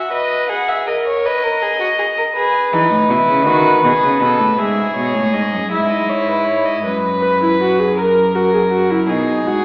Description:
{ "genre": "classical, baroque-style fugue for string quartet", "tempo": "54 BPM (dotted quarters)", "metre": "6/8", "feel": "straight", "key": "E major", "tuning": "A4 = 440 Hz", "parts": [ { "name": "dark violin", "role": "melody", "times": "0.0-6.8 s", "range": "B4 to F#5", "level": "-16 LUFS", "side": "equal", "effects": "none" }, { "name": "rich violin", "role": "second line", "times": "0.0-9.6 s", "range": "D#4 to B4", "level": "-18 LUFS", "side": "equal", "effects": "none" }, { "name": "rich cello", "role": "bass", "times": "2.7-9.6 s", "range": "F#2 to E3", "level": "-19 LUFS", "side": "equal", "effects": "none" }, { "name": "warm viola", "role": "accompaniment", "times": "7.2-9.6 s", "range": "D#4 to B4", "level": "-16 LUFS", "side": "equal", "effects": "none" } ], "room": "wet concert hall reverb, RT60 1.8 s", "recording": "heard from further back in the room, AM radio sound", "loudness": "-13 LUFS", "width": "side -27 dB against mid", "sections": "0.0-9.6 A section", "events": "none", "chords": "0.1 B; 2.4 E; 3.5 D#dim; 4.6 E/G#; 6.8 B5/F#; 8.0 F#7; 9.1 B" }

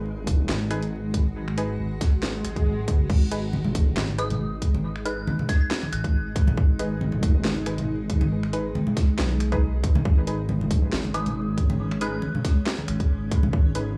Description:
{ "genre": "deep dubstep", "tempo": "138 BPM", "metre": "4/4", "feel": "swing 55% on 16ths, half-time", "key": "G# minor", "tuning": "A4 = 444 Hz", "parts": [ { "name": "granular cloud pad", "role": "sustained chords", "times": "0.0-14.0 s", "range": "G#3 to F#4", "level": "-35 LUFS", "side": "equal", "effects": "built-in reverb" }, { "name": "dark detuned saw bass", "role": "bass", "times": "0.0-14.0 s", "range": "G#1 to B1", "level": "-29 LUFS", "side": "equal", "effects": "none" }, { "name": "electronic kick drum", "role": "drums", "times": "0.3-13.6 s", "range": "none", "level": "-24 LUFS", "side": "equal", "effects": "none" }, { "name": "garage drum kit", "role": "drums", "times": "0.3-13.8 s", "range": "crash cymbal, finger snaps, handclaps, hi-hat, snare drum", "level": "-34 LUFS", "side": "equal", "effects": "none" }, { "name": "filtered dub chord stab", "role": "stabs", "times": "0.7-13.8 s", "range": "D#4 to B4", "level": "-37 LUFS", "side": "equal", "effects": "chorus, dub echo" }, { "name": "swell", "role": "sound effects", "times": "2.4-3.1 s", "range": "none", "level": "-35 LUFS", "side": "equal", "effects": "none" }, { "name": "congas", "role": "percussion", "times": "3.5-13.5 s", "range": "none", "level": "-31 LUFS", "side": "equal", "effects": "dub echo" }, { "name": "dark detuned synth bell", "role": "melody", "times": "4.2-6.5, 11.1-12.3 s", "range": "D#6 to G#6", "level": "-38 LUFS", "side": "equal", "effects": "chorus, phaser, dub echo" } ], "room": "little or no reverb", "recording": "vinyl crackle, small room ambience", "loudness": "-24 LUFS", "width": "mono", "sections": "0.0-14.0 A section", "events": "swell 2.4-3.1", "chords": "0.0 G#m" }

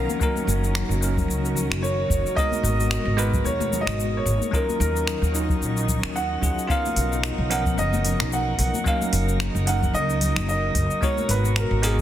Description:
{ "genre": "sunset chillout", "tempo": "111 BPM", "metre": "4/4", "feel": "swing 56% on 16ths", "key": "F# major", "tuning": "A4 = 440 Hz", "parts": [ { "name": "dark concert grand piano", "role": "melody", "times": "0.0-12.0 s", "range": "G#4 to F#5", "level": "-27 LUFS", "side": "right 1 dB", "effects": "tape echo" }, { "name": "bell-like tine electric piano", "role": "accompaniment", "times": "0.0-12.0 s", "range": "E#3 to A#4", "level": "-29 LUFS", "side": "equal", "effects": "medium stereo tremolo, auto-pan, tape echo" }, { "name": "dark studio string section", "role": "sustained chords", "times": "0.0-12.0 s", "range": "B2 to A#5", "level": "-32 LUFS", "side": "right 1 dB", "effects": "none" }, { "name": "upright bass", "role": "bass", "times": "0.0-12.0 s", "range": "F#1 to D#2", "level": "-24 LUFS", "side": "equal", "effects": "none" }, { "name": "drifting glass-harmonics texture", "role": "texture", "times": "0.0-12.0 s", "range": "F#4 to D#5", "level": "-37 LUFS", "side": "equal", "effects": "chorus, built-in reverb" }, { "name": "smooth R&B drum kit", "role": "drums", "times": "0.1-12.0 s", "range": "cabasa, finger snaps, hi-hat", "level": "-30 LUFS", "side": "left 2 dB", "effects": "soft clipping on snare" }, { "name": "congas", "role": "percussion", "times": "0.1-12.0 s", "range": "none", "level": "-34 LUFS", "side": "left 4 dB", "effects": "none" }, { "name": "electronic kick drum", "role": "drums", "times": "0.2-12.0 s", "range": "none", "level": "-25 LUFS", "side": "equal", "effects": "none" } ], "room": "light reverb, small room ambience", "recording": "dense, heavily limited modern master", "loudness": "-20 LUFS", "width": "side -12 dB against mid", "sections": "0.0-12.0 A section", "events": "none", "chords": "0.2 F#6; 2.4 G#m9; 4.5 D#m9; 6.7 Bmaj9#11; 8.9 F#6; 11.0 G#m9" }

